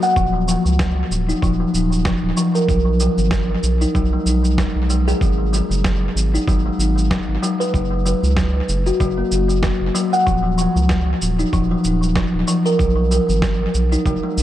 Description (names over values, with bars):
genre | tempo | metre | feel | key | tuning
organic downtempo | 95 BPM | 4/4 | swing 56% on 16ths | unclear | A4 = 440 Hz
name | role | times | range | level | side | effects
kalimba | arpeggios | 0.0-14.4 s | E#3 to F#5 | -19 LUFS | left 1 dB | low-pass filter, dub echo
electronic shaker and snare drum | drums | 0.0-14.4 s | none | -26 LUFS | right 1 dB | tape echo
round analog bass | bass | 0.2-14.4 s | D#1 to C#2 | -20 LUFS | equal | sidechain pumping
electronic kick drum | drums | 0.2-14.2 s | none | -21 LUFS | equal | none
room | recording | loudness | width
moderate spring reverb, RT60 2.5 s | echo-heavy mix | -16 LUFS | side -13 dB against mid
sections
0.0-14.4 A section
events
filter sweep on kalimba 0.0-14.4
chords
0.2 D#sus2; 2.7 B5; 5.2 G#7(no3); 7.7 F#5; 10.3 D#sus2; 12.8 B5